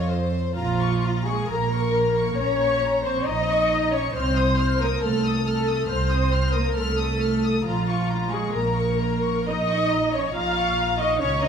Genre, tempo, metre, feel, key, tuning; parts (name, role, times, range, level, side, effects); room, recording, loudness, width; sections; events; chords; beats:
classical, slow romantic movement for string orchestra; 68 BPM; 4/4; uneven beats, rubato; Bb minor; A4 = 442 Hz
warm symphonic violin section; melody; 0.0-11.5 s; Bb5 to F6; -31 LUFS; left 6 dB
warm symphonic violin section; second line; 0.0-11.5 s; F4 to F5; -30 LUFS; left 5 dB
dark symphonic viola section; accompaniment; 0.0-11.5 s; F4 to F5; -25 LUFS; equal
warm chamber double bass section; bass; 0.0-11.5 s; Bb1 to F2; -26 LUFS; right 2 dB
warm symphonic cello section; bass; 0.0-11.5 s; F3 to F4; -29 LUFS; right 2 dB
wet concert hall reverb, RT60 1.9 s; dark, warm production; -20 LUFS; side -7 dB against mid
0.6-11.5 A section
0.0 F; 0.6 Bbm; 4.1 F7/C; 7.7 Bbm
| 0.57 1.49 2.38 3.26 | 4.15 5.03 5.90 6.77 | 7.66 8.54 9.48 10.34 | 11.20